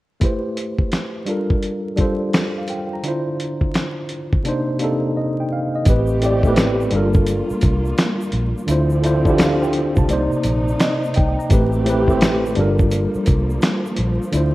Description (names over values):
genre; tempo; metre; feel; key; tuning
lo-fi hip hop; 85 BPM; 4/4; swing 65% on 16ths; unclear; A4 = 439 Hz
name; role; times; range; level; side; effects
tine electric piano; accompaniment; 0.2-14.5 s; A2 to Bb5; -20 LUFS; equal; overdrive, fast stereo tremolo, cassette tape
dusty soul sampler-style drum kit; drums; 0.2-14.5 s; finger snaps, hi-hat, kick drum, snare drum; -19 LUFS; equal; none
dark studio string section; sustained chords; 5.9-14.5 s; C3 to G4; -26 LUFS; equal; none
vintage muted fingered electric bass; bass; 5.9-14.5 s; G1 to D2; -21 LUFS; equal; none
tube shaker; percussion; 5.9-14.5 s; none; -48 LUFS; left 3 dB; none
room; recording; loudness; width
light reverb, digital ambience; rough home demo mix, vinyl crackle; -16 LUFS; side -17 dB against mid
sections
0.2-5.9 A section; 5.9-14.5 B section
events
silent gap 5.2-5.9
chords
0.2 Am7; 1.3 Gm7; 3.0 Dm7; 4.5 Cm7; 5.9 Am7; 6.9 Gm7; 8.7 Dm7; 10.1 Cm7; 11.5 Am7; 12.6 Gm7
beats
| 0.21 0.92 1.63 2.33 | 3.04 3.74 4.45 5.16 | 5.86 6.57 7.27 7.98 | 8.69 9.39 10.10 10.80 | 11.51 12.21 12.92 13.63 | 14.33